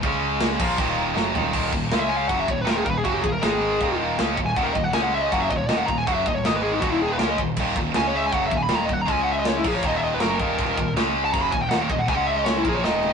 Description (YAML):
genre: heavy metal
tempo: 159 BPM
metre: 4/4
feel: straight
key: Eb phrygian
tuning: A4 = 441 Hz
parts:
  - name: picked electric bass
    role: bass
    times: 0.0-13.1 s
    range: Eb1 to Db2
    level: -32 LUFS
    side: equal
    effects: none
  - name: tight metal drum kit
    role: drums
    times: 0.0-13.1 s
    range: china cymbal, crash cymbal, kick drum, snare drum, toms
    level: -26 LUFS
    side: equal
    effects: none
  - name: heavy high-gain guitar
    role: riff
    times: 0.1-13.1 s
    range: Eb2 to Db4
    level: -23 LUFS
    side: equal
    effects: distortion
  - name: high-gain lead guitar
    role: melody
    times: 2.0-13.1 s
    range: Eb4 to Cb6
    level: -24 LUFS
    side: left 1 dB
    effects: distortion
room: light reverb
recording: rough rehearsal-room recording, nothing above 10.3 kHz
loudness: -20 LUFS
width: side -6 dB against mid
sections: 0.0-1.5 A section; 1.5-13.1 B section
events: drum fill 1.2-1.5, 12.8; lead electric guitar solo 1.5-13.1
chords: 0.0 Db5; 0.6 Ebm; 1.5 Eb5; 1.9 Db5; 2.3 Ebm; 3.4 Ab5; 3.8 Eb5; 4.9 Db5; 5.3 Ebm; 6.5 Ab5; 6.8 Eb5; 8.0 Db5; 8.3 Ebm; 9.1 Db5; 9.7 Ebm; 11.0 Db5; 11.3 Ebm; 12.1 Db5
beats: | 0.03 0.41 0.79 1.17 | 1.54 1.92 2.30 2.67 | 3.05 3.43 3.81 4.19 | 4.56 4.94 5.32 5.70 | 6.07 6.45 6.83 7.20 | 7.58 7.96 8.33 8.71 | 9.09 9.46 9.84 10.22 | 10.59 10.97 11.34 11.72 | 12.10 12.47 12.85